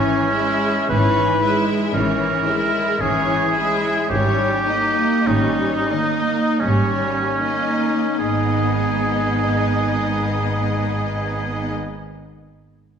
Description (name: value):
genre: classical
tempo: 36-59 BPM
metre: 3/4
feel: rubato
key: G# minor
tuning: A4 = 437 Hz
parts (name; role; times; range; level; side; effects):
- rich studio violin section; melody; 0.0-11.7 s; C#5 to E5; -30 LUFS; left 3 dB; none
- clear oboe; second line; 0.0-11.7 s; C#4 to B4; -21 LUFS; right 1 dB; none
- clear studio violin section; second line; 0.0-11.7 s; C#4 to E4; -26 LUFS; left 3 dB; none
- clear studio viola section; accompaniment; 0.0-11.7 s; E3 to B3; -24 LUFS; right 1 dB; none
- concert harp; arpeggios; 0.0-12.1 s; G#2 to B4; -28 LUFS; left 4 dB; none
- bright studio cello section; bass; 0.0-11.7 s; G#2; -27 LUFS; right 2 dB; none
- clear studio double bass section; bass; 0.0-11.7 s; G#1; -27 LUFS; right 3 dB; none
room: wet recital hall reverb, RT60 1.6 s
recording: recorded in a church or concert hall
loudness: -17 LUFS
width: side -7 dB against mid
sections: 0.0-8.2 A section; 8.2-12.4 B section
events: slowing down 0.0-8.2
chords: 0.0 C#m/G#; 4.1 D#7/G#; 8.2 G#m